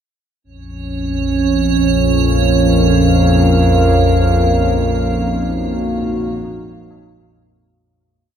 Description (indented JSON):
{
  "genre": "dark ambient drone",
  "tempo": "65 BPM",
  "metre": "4/4",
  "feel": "straight",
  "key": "Bb minor",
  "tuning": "A4 = 437 Hz",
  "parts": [
    { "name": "dark analog pad", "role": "sustained chords", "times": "0.4-7.8 s", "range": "Bb3 to F5", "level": "-17 LUFS", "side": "right 3 dB", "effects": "chorus" },
    { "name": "analog drone", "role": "drone", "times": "0.7-7.9 s", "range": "Bb1 to F2", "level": "-15 LUFS", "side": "left 1 dB", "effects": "chorus" },
    { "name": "icy glass pad", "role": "texture", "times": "0.8-7.8 s", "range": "Db5", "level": "-22 LUFS", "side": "right 8 dB", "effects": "chorus, built-in reverb" },
    { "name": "old church bells", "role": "arpeggios", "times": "6.0-8.4 s", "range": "Ab2 to Eb4", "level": "-41 LUFS", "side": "left 2 dB", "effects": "none" }
  ],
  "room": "moderate huge ambient reverb, RT60 9.0 s",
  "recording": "dreamy mix soaked in reverb",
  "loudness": "-12 LUFS",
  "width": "side -8 dB against mid",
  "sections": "0.4-7.8 A section",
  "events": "fade-out on ambient pad 0.4-7.8; fade-out 4.1-7.8",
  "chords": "0.4 Bbm; 4.1 Ebmadd9/Bb"
}